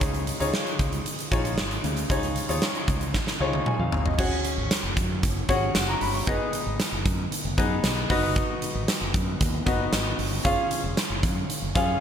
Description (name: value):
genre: 1980s-style pop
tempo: 115 BPM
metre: 4/4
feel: straight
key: unclear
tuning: A4 = 438 Hz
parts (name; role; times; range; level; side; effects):
- clear baby grand piano; accompaniment; 0.0-12.0 s; C#3 to C#6; -28 LUFS; left 2 dB; lush chorus
- mellow fretless electric bass; bass; 0.0-11.9 s; E#1 to F#2; -30 LUFS; equal; none
- huge arena drum kit; drums; 0.0-11.9 s; crash cymbal, hi-hat, kick drum, snare drum, tambourine, toms; -26 LUFS; right 1 dB; none
room: light reverb, studio ambience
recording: bright 1980s-style digital production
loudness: -23 LUFS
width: side -8 dB against mid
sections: 0.0-4.2 A section; 4.2-12.0 B section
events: drum fill 3.1-4.2; grand piano fill 11.5-12.0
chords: 0.0 C#add9; 4.2 F#sus2; 6.3 G#m/F#; 8.1 B/F#; 10.4 C#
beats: | 0.01 0.54 1.06 1.58 | 2.10 2.62 3.14 3.67 | 4.19 4.71 5.23 5.75 | 6.28 6.80 7.32 7.84 | 8.36 8.88 9.40 9.93 | 10.45 10.97 11.49